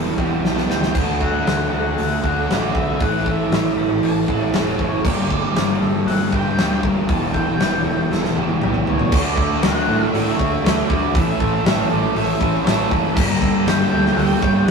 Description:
rock, shoegaze and dream pop; 118 BPM; 4/4; straight; D major; A4 = 440 Hz
direct-recorded clean electric guitar; arpeggios; 0.0-14.7 s; F#4 to D5; -32 LUFS; left 3 dB
crunchy overdriven guitar; riff; 0.0-14.7 s; E2 to A4; -22 LUFS; right 5 dB
thick fuzz guitar; riff; 0.0-14.7 s; E2 to D4; -24 LUFS; left 4 dB; distortion
fuzz fingered electric bass; bass; 0.0-14.7 s; E1 to A2; -25 LUFS; equal; overdrive
huge arena drum kit; drums; 0.2-14.7 s; crash cymbal, hi-hat, kick drum, snare drum, toms; -21 LUFS; equal
octave-fuzz lead guitar; melody; 0.5-14.7 s; C#5 to B5; -26 LUFS; left 1 dB; distortion
wet small room reverb, RT60 0.5 s; rough rehearsal-room recording, tube saturation; -16 LUFS; side -5 dB against mid
0.0-9.1 A section; 9.1-14.7 B section
drum fill 0.4-1.0, 8.1-9.1
0.0 Em7; 1.0 D; 3.0 Aadd9; 5.1 Gmadd9; 7.1 Em; 9.1 D; 11.1 Aadd9; 13.2 Gmadd9

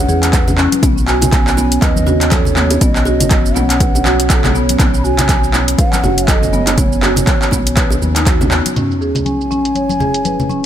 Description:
afro house; 121 BPM; 4/4; swing 58% on 16ths; A4 = 440 Hz
mellow hollow bansuri; melody; 0.0-10.7 s; C#5 to B5; -22 LUFS; right 1 dB; ping-pong delay
dark analog pad; sustained chords; 0.0-10.7 s; G#3 to G#5; -22 LUFS; right 2 dB; wide subtle chorus, sidechain pumping
round analog bass; bass; 0.0-8.6 s; F#1 to E2; -18 LUFS; equal; tube saturation, sidechain pumping
marimba with medium mallets; arpeggios; 0.1-10.6 s; B3 to C#5; -19 LUFS; equal; sidechain pumping, low-pass filter, ping-pong delay
deep house drum kit; drums; 0.1-10.6 s; handclaps, hi-hat, shaker, toms; -18 LUFS; equal; overdrive, low-pass filter on hats, low-pass filter on perc, low-pass filter on snare, low-pass filter on toms
congas; percussion; 0.1-10.6 s; -22 LUFS; left 1 dB
electronic kick drum; drums; 0.3-8.4 s; -15 LUFS; equal; overdrive
bongos; percussion; 0.5-8.5 s; -26 LUFS; right 4 dB
sub drop; sound effects; 8.8-10.7 s; -25 LUFS; equal
light reverb, small room reverb; -11 LUFS; side -10 dB against mid
0.0-8.8 A section; 8.8-10.7 B section
impact 8.8-10.7; filter sweep on marimba 8.8-10.7
0.0 C#m; 0.8 Badd9; 8.8 C#m

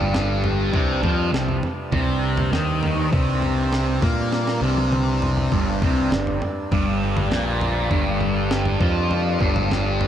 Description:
psychedelic rock; 100 BPM; 4/4; straight; A4 = 439 Hz
thick fuzz guitar; riff; 0.0-10.1 s; G2 to Bb3; -22 LUFS; equal; distortion, phaser, dub echo
fuzz fingered electric bass; bass; 0.0-10.1 s; G1 to Bb2; -24 LUFS; equal; overdrive
hand-pumped harmonium; drone; 0.0-10.1 s; G2 to D4; -31 LUFS; equal
breakbeat sampler-style drum kit; drums; 0.1-10.1 s; kick drum, snare drum, toms; -25 LUFS; equal; dub echo
light reverb, digital ambience; echo-heavy mix; -19 LUFS; side -10 dB against mid
0.0-10.1 A section
drum fill 4.3-5.5
0.0 G5; 0.7 C5; 5.5 G5

